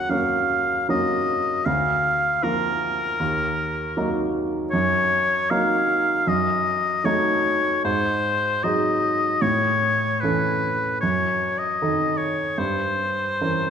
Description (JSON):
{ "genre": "classical, romantic duo for oboe and grand piano", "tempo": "77 BPM", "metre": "4/4", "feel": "rubato", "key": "unclear", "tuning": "A4 = 440 Hz", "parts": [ { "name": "clear oboe", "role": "melody", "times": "0.0-13.7 s", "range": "Bb4 to Gb5", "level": "-22 LUFS", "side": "left 2 dB", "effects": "none" }, { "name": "warm baby grand piano", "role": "accompaniment", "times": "0.0-13.7 s", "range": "D2 to Bb4", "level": "-24 LUFS", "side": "right 2 dB", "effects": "none" } ], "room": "moderate concert hall reverb, RT60 2.2 s", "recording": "minimal, uncompressed stereo recording", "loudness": "-20 LUFS", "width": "side -7 dB against mid", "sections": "0.0-13.7 A section", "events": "none", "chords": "0.0 Ebm7; 1.7 Bb/D; 3.2 Ebm; 4.7 Ebm7/Gb; 6.3 Ebm7b5/Gb; 7.8 Ab7; 9.4 A; 11.0 Ebdim/Gb; 12.6 Gdim7", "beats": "0.10 0.89 | 1.67 2.44 3.21 3.97 | 4.73 5.50 6.27 7.05 | 7.85 8.63 9.42 10.22 | 11.02 11.80 12.59 13.41" }